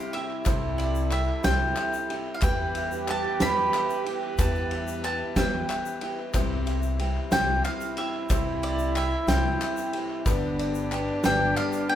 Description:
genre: indie folk with a building arrangement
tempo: 61 BPM (dotted quarters)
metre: 6/8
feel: straight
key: unclear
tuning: A4 = 441 Hz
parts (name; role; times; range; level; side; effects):
- mandolin; melody; 0.0-12.0 s; D5 to B5; -28 LUFS; equal; none
- breathy trombone; second line; 0.0-12.0 s; D4 to G4; -32 LUFS; right 3 dB; none
- picked steel-string acoustic guitar; accompaniment; 0.0-12.0 s; G2 to G4; -34 LUFS; left 4 dB; none
- clear brass ensemble; sustained chords; 0.0-12.0 s; C3 to B4; -39 LUFS; left 1 dB; none
- warm upright piano; arpeggios; 0.0-12.0 s; B4 to G5; -37 LUFS; right 6 dB; none
- loose indie drum kit; drums; 0.1-12.0 s; kick drum, ride cymbal, snare drum; -30 LUFS; equal; none
- group handclap; percussion; 0.3-11.8 s; none; -39 LUFS; left 4 dB; none
- upright bass; bass; 0.5-11.5 s; G1 to E2; -30 LUFS; equal; none
- egg shaker; percussion; 0.5-11.9 s; none; -44 LUFS; left 7 dB; none
room: moderate large studio reverb, RT60 1.2 s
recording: band playing live in one room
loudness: -24 LUFS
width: side -11 dB against mid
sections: 0.0-12.0 A section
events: none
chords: 0.0 C; 2.4 Em; 6.3 C; 10.3 G

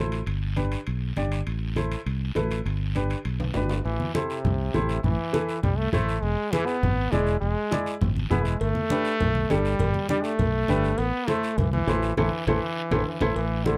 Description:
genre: latin, cumbia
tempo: 202 BPM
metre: 4/4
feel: straight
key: A minor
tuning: A4 = 443 Hz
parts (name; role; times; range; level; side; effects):
- warm upright piano; accompaniment; 0.0-13.8 s; D4 to D5; -30 LUFS; equal; none
- fingered electric bass; bass; 0.0-13.8 s; E1 to C2; -29 LUFS; equal; none
- guiro; percussion; 0.1-13.8 s; none; -44 LUFS; equal; none
- timbales and cowbell; percussion; 0.1-3.8, 8.6-13.5 s; none; -39 LUFS; equal; none
- congas; percussion; 0.6-13.8 s; none; -31 LUFS; equal; none
- brilliant trombone; second line; 3.8-13.8 s; C3 to B3; -30 LUFS; equal; none
room: light reverb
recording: close, detailed microphones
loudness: -26 LUFS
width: mono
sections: 0.0-3.9 A section; 3.9-13.4 B section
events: drum fill 3.4-3.9, 12.2-13.4; band accent 12.2-13.4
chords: 0.3 G; 1.5 Am; 2.7 G; 3.9 Am; 6.2 E7; 8.6 G; 11.0 Am

